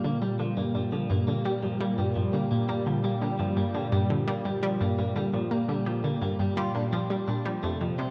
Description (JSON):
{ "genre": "ambient, sequencer-driven space music", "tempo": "85 BPM", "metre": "4/4", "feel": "straight", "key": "G minor", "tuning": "A4 = 439 Hz", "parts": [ { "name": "lush unison pad", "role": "sustained chords", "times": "0.0-8.1 s", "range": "Bb2 to F4", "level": "-32 LUFS", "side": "equal", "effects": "chorus" }, { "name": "electric guitar at the edge of break-up", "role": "arpeggios", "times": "0.0-8.1 s", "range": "F3 to F4", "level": "-36 LUFS", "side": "equal", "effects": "tape echo" }, { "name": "analog pluck", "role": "riff", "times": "0.0-8.1 s", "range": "F2 to Bb3", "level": "-31 LUFS", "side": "equal", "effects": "chorus, cassette tape, tape echo" } ], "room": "wet plate reverb, RT60 3.5 s", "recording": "dark, warm production", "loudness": "-28 LUFS", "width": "mono", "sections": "0.0-8.1 A section", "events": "none", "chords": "0.0 Gm7", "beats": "0.57 1.28 | 1.98 2.69 3.40 4.10 | 4.81 5.51 6.22 6.92 | 7.63" }